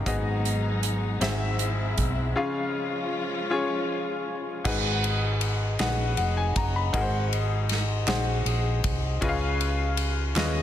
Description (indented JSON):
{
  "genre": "slow gospel",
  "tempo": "52 BPM (dotted quarters)",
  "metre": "6/8",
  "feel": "straight",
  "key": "unclear",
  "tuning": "A4 = 440 Hz",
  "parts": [
    { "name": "clear grand piano", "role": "accompaniment", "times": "0.0-10.6 s", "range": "G#2 to B5", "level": "-28 LUFS", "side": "left 3 dB", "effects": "none" },
    { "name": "dark studio string section", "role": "sustained chords", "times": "0.0-4.6 s", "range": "E#3 to E#4", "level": "-33 LUFS", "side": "left 1 dB", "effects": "none" },
    { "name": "hollow-body short-scale fingered electric bass", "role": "bass", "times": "0.0-10.6 s", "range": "E#1 to D#2", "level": "-27 LUFS", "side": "right 1 dB", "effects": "none" },
    { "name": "natural country drum kit", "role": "drums", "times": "0.1-10.5 s", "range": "crash cymbal, hi-hat, kick drum, ride cymbal, snare drum", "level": "-30 LUFS", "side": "right 1 dB", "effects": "none" },
    { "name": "group handclap", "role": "percussion", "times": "5.8-10.6 s", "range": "none", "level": "-39 LUFS", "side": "right 7 dB", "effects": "none" }
  ],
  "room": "light reverb, small room ambience",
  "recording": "dense, heavily limited modern master",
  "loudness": "-24 LUFS",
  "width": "side -11 dB against mid",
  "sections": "0.0-4.6 A section; 4.6-10.6 B section",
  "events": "break 2.4-4.6",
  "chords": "0.1 G#m7; 1.2 G#7alt; 2.4 C#; 4.6 G#m7; 6.9 G#7; 9.2 C#7"
}